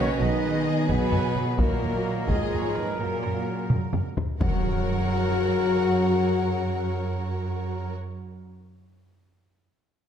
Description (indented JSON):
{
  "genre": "cinematic, epic orchestral film score",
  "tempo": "87 BPM (dotted quarters)",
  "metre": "12/8",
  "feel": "straight",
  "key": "F# major",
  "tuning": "A4 = 438 Hz",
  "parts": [
    { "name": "clear symphonic violin section", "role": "melody", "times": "0.0-7.9 s", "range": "G#4 to F#5", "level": "-37 LUFS", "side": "left 4 dB", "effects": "none" },
    { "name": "clear symphonic violin section", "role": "second line", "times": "0.0-7.9 s", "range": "F#4 to D#5", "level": "-36 LUFS", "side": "left 1 dB", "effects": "none" },
    { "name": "concert flute", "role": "second line", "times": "0.0-7.9 s", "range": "G#4 to F#5", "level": "-38 LUFS", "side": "left 2 dB", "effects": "none" },
    { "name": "rich symphonic viola section", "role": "accompaniment", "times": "0.0-7.9 s", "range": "E#3 to F#4", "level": "-34 LUFS", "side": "right 1 dB", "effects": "none" },
    { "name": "dark trombone section", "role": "sustained chords", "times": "0.0-7.9 s", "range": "C#3 to F#3", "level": "-38 LUFS", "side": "right 5 dB", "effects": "none" },
    { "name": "warm French horn section", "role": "sustained chords", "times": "0.0-7.9 s", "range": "G#3 to F#4", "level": "-29 LUFS", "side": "left 6 dB", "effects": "none" },
    { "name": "warm woodwind section", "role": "sustained chords", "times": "0.0-7.9 s", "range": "C#4 to F#5", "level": "-41 LUFS", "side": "equal", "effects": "none" },
    { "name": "dark trumpet section", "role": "stabs", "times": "0.0-7.9 s", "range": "A#4 to B4", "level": "-36 LUFS", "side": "right 2 dB", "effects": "none" },
    { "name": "clear symphonic cello section", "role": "bass", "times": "0.0-7.9 s", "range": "G#2 to F#3", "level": "-32 LUFS", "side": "right 2 dB", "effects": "none" },
    { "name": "warm symphonic double bass section", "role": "bass", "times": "0.0-7.9 s", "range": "B1 to F#2", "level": "-29 LUFS", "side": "right 3 dB", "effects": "none" },
    { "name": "taiko ensemble", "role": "drums", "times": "0.9-4.5 s", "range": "none", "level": "-26 LUFS", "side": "equal", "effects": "none" },
    { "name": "impact", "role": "sound effects", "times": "4.4-8.7 s", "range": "none", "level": "-31 LUFS", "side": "equal", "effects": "none" }
  ],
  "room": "moderate scoring stage reverb, RT60 1.7 s",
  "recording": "dark, warm production",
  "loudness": "-23 LUFS",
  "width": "side -8 dB against mid",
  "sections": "0.0-4.4 A section; 4.4-7.2 B section",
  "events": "drum fill 3.7-4.4; impact 4.4-7.2",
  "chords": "0.0 B; 1.6 D#m; 3.0 F#"
}